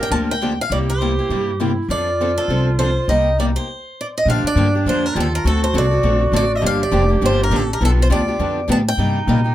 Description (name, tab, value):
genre	acoustic string swing (jazz manouche)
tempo	203 BPM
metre	4/4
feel	swing 60% on 8ths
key	Bb major from 4.3 s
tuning	A4 = 440 Hz
part	picked swing-style acoustic guitar	melody	0.0-9.5 s	A4 to A5	-21 LUFS	equal	none
part	warm clarinet	second line	0.0-9.5 s	D4 to Bb4	-24 LUFS	right 5 dB	none
part	picked steel-string acoustic guitar	accompaniment	0.0-9.5 s	C3 to A4	-24 LUFS	left 5 dB	none
part	picked steel-string acoustic guitar	accompaniment	0.1-9.4 s	C3 to A4	-27 LUFS	right 5 dB	none
part	upright bass	bass	0.1-9.5 s	F1 to Bb2	-19 LUFS	equal	none
room	moderate club reverb, RT60 0.5 s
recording	none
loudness	-15 LUFS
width	side -13 dB against mid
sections	0.0-4.3 A section; 4.3-9.5 B section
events	stop 3.7-4.3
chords	0.0 Gm7; 0.7 C7; 1.9 F6; 3.1 Cm7; 3.7 N.C.; 4.3 Bb6; 5.4 D7; 6.6 Gm7; 7.8 G7; 9.0 Cm7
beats	0.12 0.41 | 0.71 1.01 1.30 1.60 | 1.90 2.19 2.49 2.79 | 3.08 3.38 3.67 3.97 | 4.26 4.56 4.86 5.15 | 5.45 5.74 6.04 6.33 | 6.62 6.92 7.21 7.51 | 7.80 8.10 8.40 8.69 | 8.99 9.28